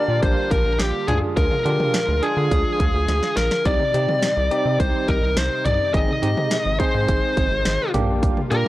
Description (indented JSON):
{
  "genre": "synth-pop",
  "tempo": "105 BPM",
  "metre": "4/4",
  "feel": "straight",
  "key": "C minor",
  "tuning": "A4 = 441 Hz",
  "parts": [
    { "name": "high-gain lead guitar", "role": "melody", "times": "0.0-8.7 s", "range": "G4 to Eb5", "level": "-22 LUFS", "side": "left 1 dB", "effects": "distortion, analog delay" },
    { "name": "bell-like tine electric piano", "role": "accompaniment", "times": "0.0-8.7 s", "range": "Bb3 to Bb4", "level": "-26 LUFS", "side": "right 1 dB", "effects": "medium stereo tremolo" },
    { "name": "lush unison pad", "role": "sustained chords", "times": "0.0-8.7 s", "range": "C3 to F4", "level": "-30 LUFS", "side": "right 1 dB", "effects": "chorus" },
    { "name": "rubbery square bass", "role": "bass", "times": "0.1-8.6 s", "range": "Ab1 to D3", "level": "-23 LUFS", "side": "equal", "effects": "tube saturation" },
    { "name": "house drum kit", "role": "drums", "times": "0.2-8.7 s", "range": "hi-hat, kick drum, snare drum, toms", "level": "-23 LUFS", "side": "equal", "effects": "none" }
  ],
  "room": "little or no reverb",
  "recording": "dry, gritty hardware recording, cassette tape",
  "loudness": "-18 LUFS",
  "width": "side -16 dB against mid",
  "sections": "0.0-8.7 A section",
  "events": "drum fill 3.1-3.7",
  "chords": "0.0 Bb6; 1.1 Ddim; 3.7 Cm; 5.9 Ab; 7.9 Bb6"
}